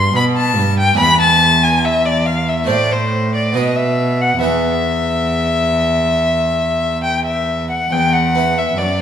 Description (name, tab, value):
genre	classical, baroque-style sonata movement with continuo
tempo	69 BPM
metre	4/4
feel	straight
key	E minor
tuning	A4 = 440 Hz
part	rich violin	melody	0.0-9.0 s	C5 to C6	-15 LUFS	left 2 dB	none
part	harpsichord	accompaniment	0.0-9.0 s	E2 to D5	-21 LUFS	right 2 dB	none
part	rich cello	bass	0.0-9.0 s	E2 to B2	-19 LUFS	right 2 dB	none
room	wet recital hall reverb, RT60 1.4 s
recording	minimal, uncompressed stereo recording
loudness	-13 LUFS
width	side -9 dB against mid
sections	0.0-7.9 A section; 7.9-9.0 B section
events	none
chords	0.0 Em (rootless); 1.0 E7; 2.7 Am; 3.6 Badd11; 4.4 E5; 7.9 Em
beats	0.14 | 0.99 1.84 2.69 3.55 | 4.42 5.29 6.17 7.04 | 7.91 8.76